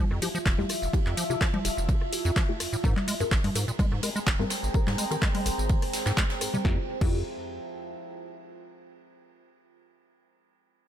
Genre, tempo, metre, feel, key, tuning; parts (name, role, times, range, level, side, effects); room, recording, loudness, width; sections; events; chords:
acid house; 126 BPM; 4/4; swing 53% on 16ths; A4 = 440 Hz
acid bass, square; riff; 0.0-7.2 s; F1 to Ab3; -31 LUFS; equal; overdrive, digital delay
filtered dub chord stab; stabs; 0.0-7.2 s; A3 to Bb4; -37 LUFS; left 4 dB; phaser, lush chorus, cassette tape, digital delay
deep dark ambient pad; texture; 0.0-8.5 s; F4 to Bb5; -35 LUFS; right 1 dB; chorus, built-in reverb, sidechain pumping
punchy analog drum machine; drums; 0.1-7.1 s; congas, crash cymbal, handclaps, hi-hat, rim click, snare drum, tambourine; -31 LUFS; left 1 dB; overdrive, small room ambience
natural country drum kit; drums; 0.2-6.5 s; ride cymbal, snare drum; -40 LUFS; right 3 dB; sidechain pumping on cymbals, high-pass filter on cymbals, small room ambience, high-pass filter on snare, high-pass filter on room
electronic kick drum; drums; 0.5-7.1 s; -26 LUFS; equal; overdrive, small room ambience
digital ambience; -24 LUFS; side -10 dB against mid
0.0-6.6 A section; 6.6-8.6 B section
filter sweep on acid bass 0.0-6.6; filter sweep on synth stab 0.0-6.6
0.0 Fmaj9; 2.8 Abmaj9; 6.6 Fmaj9